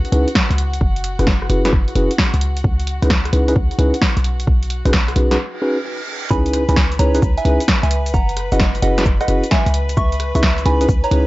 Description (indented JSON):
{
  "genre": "UK garage, two-step garage",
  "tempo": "131 BPM",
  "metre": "4/4",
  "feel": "swing 67% on 16ths",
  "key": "C# minor",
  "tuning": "A4 = 439 Hz",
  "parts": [
    { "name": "clear chamber violin section", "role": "sustained chords", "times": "0.0-11.3 s", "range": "F#4 to B5", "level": "-30 LUFS", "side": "left 2 dB", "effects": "sidechain pumping" },
    { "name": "short 808-style bass", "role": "bass", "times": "0.0-11.3 s", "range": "F#1 to C#2", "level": "-18 LUFS", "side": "equal", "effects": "sidechain pumping" },
    { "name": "punchy analog drum machine", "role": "drums", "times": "0.0-11.2 s", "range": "cabasa, hi-hat, rim click, snare drum", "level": "-21 LUFS", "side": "equal", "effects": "none" },
    { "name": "mellow tine electric piano", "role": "stabs", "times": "0.1-11.3 s", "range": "C#4 to B4", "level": "-20 LUFS", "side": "equal", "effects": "tape echo" },
    { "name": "electronic kick drum", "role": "drums", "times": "0.4-11.0 s", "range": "none", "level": "-18 LUFS", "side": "equal", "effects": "none" },
    { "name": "reverse cymbal", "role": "sound effects", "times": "5.5-6.3 s", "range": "none", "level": "-27 LUFS", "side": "right 3 dB", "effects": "none" },
    { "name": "soft synth bell", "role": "melody", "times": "6.3-11.3 s", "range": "C#5 to C#6", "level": "-23 LUFS", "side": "right 2 dB", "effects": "chorus, dub echo" }
  ],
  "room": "light reverb",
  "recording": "nothing above 7.7 kHz",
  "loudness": "-14 LUFS",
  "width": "side -19 dB against mid",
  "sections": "0.0-6.3 A section; 6.3-11.3 B section",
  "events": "break 5.4-6.3; reverse cymbal 5.5-6.3; drop 6.3-11.3",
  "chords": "0.0 C#m7; 0.8 F#7sus4; 2.4 C#m7; 4.2 B69; 6.3 C#m7; 8.1 F#7sus4; 9.7 B69",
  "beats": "0.35 | 0.81 1.27 1.73 2.18 | 2.64 3.10 3.56 4.02 | 4.47 4.93 5.39 5.85 | 6.31 6.76 7.22 7.68 | 8.14 8.60 9.05 9.51 | 9.97 10.43 10.89"
}